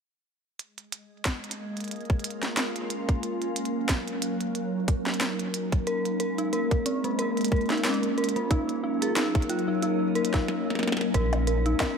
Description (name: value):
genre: IDM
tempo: 91 BPM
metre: 4/4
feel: swing 56% on 16ths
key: Bb minor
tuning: A4 = 440 Hz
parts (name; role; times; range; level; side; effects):
- glassy FM pad; sustained chords; 1.4-12.0 s; Gb3 to Bb4; -29 LUFS; left 1 dB; ensemble chorus, built-in reverb, phaser, vintage 12-bit sampler grit
- glitchy drum kit; drums; 0.6-12.0 s; hi-hat, percussion blips, snare drum; -31 LUFS; equal; none
- electronic kick drum; drums; 1.3-12.0 s; none; -25 LUFS; equal; none
- dark detuned synth bell; arpeggios; 5.9-12.0 s; Bb3 to Bb4; -28 LUFS; right 1 dB; chorus, tape echo
- round analog bass; bass; 11.1-11.7 s; Bb1; -25 LUFS; equal; none
room: moderate echo chamber reverb, RT60 2.3 s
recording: none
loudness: -25 LUFS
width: side -6 dB against mid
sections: 0.6-11.1 A section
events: filter sweep on ambient pad 0.6-11.1; drum fill 10.5-11.1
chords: 0.6 Bbm7; 3.2 Ebm7; 5.9 Bbm7; 8.5 Ebm7; 11.1 Bbm7